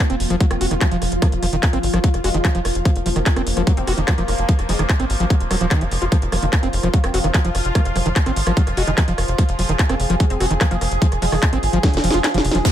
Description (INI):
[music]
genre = psychedelic trance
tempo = 147 BPM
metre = 4/4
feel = straight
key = F phrygian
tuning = A4 = 440 Hz
[part]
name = bubbling stepped-filter texture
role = sustained chords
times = 0.0-12.7 s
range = F3 to Ab4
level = -25 LUFS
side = equal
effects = chorus, built-in reverb, sidechain pumping
[part]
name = electronic kick drum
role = drums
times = 0.0-12.7 s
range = none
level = -16 LUFS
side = equal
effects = overdrive
[part]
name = techno drum kit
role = drums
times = 0.0-12.7 s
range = crash cymbal, handclaps, hi-hat, rim click, snare drum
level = -24 LUFS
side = equal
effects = none
[part]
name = screaming distorted acid line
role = riff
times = 0.1-12.7 s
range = Eb3 to Gb4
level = -24 LUFS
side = equal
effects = distortion, chorus, auto-pan, sidechain pumping, tape echo
[part]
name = tight sequencer bass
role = bass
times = 0.1-12.6 s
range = Eb1 to Ab1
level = -22 LUFS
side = equal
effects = tube saturation
[part]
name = resonant blip pluck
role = second line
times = 0.5-11.5 s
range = Ab3 to C4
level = -33 LUFS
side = left 2 dB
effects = chorus, sidechain pumping, high-pass filter, tape echo
[part]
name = maracas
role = percussion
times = 12.7 s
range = none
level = -29 LUFS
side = right 4 dB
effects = none
[part]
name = downlifter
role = sound effects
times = 12.7 s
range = none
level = -20 LUFS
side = equal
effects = none
[sound]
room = little or no reverb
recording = none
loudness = -16 LUFS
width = side -11 dB against mid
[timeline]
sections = 0.0-12.7 A section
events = drum fill 11.8-12.7; kick drops out 12.2-12.7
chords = 0.0 F5